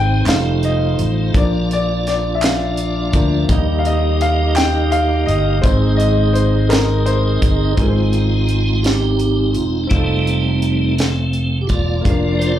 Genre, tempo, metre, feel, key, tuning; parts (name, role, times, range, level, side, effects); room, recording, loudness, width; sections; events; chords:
slow gospel; 56 BPM (dotted quarters); 6/8; straight; Ab major; A4 = 440 Hz
clear baby grand piano; accompaniment; 0.0-12.6 s; Ab2 to G5; -21 LUFS; left 2 dB; slapback echo
tonewheel organ; sustained chords; 0.0-12.6 s; F3 to Eb5; -20 LUFS; right 3 dB; fast rotary speaker, overdrive, chorus vibrato
fingered electric bass; bass; 0.0-12.6 s; Fb1 to Eb2; -18 LUFS; equal
tight funk drum kit; drums; 0.3-12.6 s; hi-hat, kick drum, snare drum; -19 LUFS; equal
group handclap; percussion; 0.3-7.0 s; -28 LUFS; right 1 dB
moderate club reverb, RT60 0.6 s; live gig heard through the venue's PA, club ambience; -14 LUFS; side -11 dB against mid
0.0-7.8 A section; 7.8-12.6 B section
grand piano solo 0.0-7.8; tonewheel organ solo 7.8-12.6
0.3 F7; 1.3 Bb; 3.5 Eb; 5.6 Ab; 9.9 F7; 12.1 Bb/F